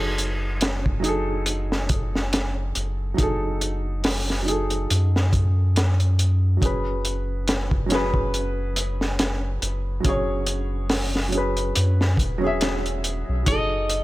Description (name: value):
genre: trip hop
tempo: 70 BPM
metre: 4/4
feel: swing 56% on 16ths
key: F# dorian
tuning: A4 = 439 Hz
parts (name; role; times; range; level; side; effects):
- dark upright piano; accompaniment; 0.0-14.0 s; F#3 to E5; -27 LUFS; right 1 dB; harmonic tremolo, tape echo
- soft dub sub bass; bass; 0.0-14.0 s; E1 to F#2; -24 LUFS; equal; none
- crunchy breakbeat drum kit; drums; 0.2-14.0 s; hi-hat, kick drum, snare drum; -24 LUFS; equal; vintage 12-bit sampler grit
- electric guitar at the edge of break-up; melody; 13.5-14.0 s; D#5; -24 LUFS; equal; none
room: small room ambience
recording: none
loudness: -20 LUFS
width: side -17 dB against mid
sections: 0.0-14.0 A section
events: none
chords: 0.0 F#m69; 6.6 E69/F#; 13.5 F#m69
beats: 0.62 1.47 2.33 | 3.19 4.04 4.90 5.76 | 6.62 7.47 8.33 9.19 | 10.04 10.90 11.76 12.62 | 13.47